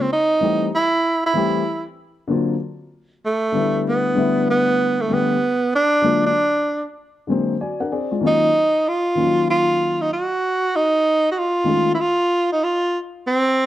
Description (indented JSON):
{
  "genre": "hip hop",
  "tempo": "96 BPM",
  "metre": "4/4",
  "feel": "swing 62% on 16ths",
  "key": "unclear",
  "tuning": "A4 = 442 Hz",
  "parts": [
    { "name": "breathy tenor saxophone", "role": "melody", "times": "0.0-13.7 s", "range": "A3 to Gb4", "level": "-17 LUFS", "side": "right 1 dB", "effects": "none" },
    { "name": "dark baby grand piano", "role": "accompaniment", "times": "0.0-11.9 s", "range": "D3 to Ab5", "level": "-21 LUFS", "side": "left 4 dB", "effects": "none" }
  ],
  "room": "moderate spring reverb, RT60 1.2 s, small room reverb",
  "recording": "dark, warm production",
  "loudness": "-17 LUFS",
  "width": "side -13 dB against mid",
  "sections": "0.0-13.7 A section",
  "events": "grand piano fill 7.3-8.2",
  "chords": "0.0 N.C.; 2.0 D7alt; 3.2 G69; 5.7 Bb7b13; 8.2 Ebm9; 10.7 F7alt",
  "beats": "0.10 | 0.73 1.35 1.98 2.60 | 3.23 3.85 4.48 5.10 | 5.73 6.35 6.98 7.60 | 8.23 8.85 9.48 10.10 | 10.73 11.35 11.98 12.60 | 13.23"
}